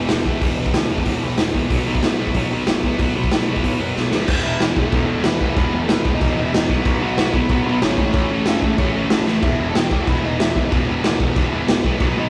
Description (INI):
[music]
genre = punk rock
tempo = 186 BPM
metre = 4/4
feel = straight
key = unclear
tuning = A4 = 440 Hz
[part]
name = sludgy distorted guitar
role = riff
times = 0.0-12.3 s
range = E2 to B3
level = -25 LUFS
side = equal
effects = overdrive
[part]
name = tight distorted guitar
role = riff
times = 0.0-12.3 s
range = E2 to B3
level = -30 LUFS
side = equal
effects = distortion
[part]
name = overdriven picked electric bass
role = bass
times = 0.0-12.3 s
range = E1 to A2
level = -29 LUFS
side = equal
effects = none
[part]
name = raw garage drum kit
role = drums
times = 0.1-12.1 s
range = crash cymbal, hi-hat, kick drum, snare drum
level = -22 LUFS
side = equal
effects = none
[part]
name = overdriven semi-hollow guitar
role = melody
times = 4.4-12.3 s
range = A3 to A5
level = -29 LUFS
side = equal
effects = none
[sound]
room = moderate studio reverb, RT60 0.5 s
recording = rough rehearsal-room recording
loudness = -19 LUFS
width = mono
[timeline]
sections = 0.0-4.3 A section; 4.3-12.3 B section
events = drum fill 4.0-4.3, 9.3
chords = 0.0 E5; 1.7 B5; 4.3 E5; 6.7 B5; 8.0 A; 9.4 E5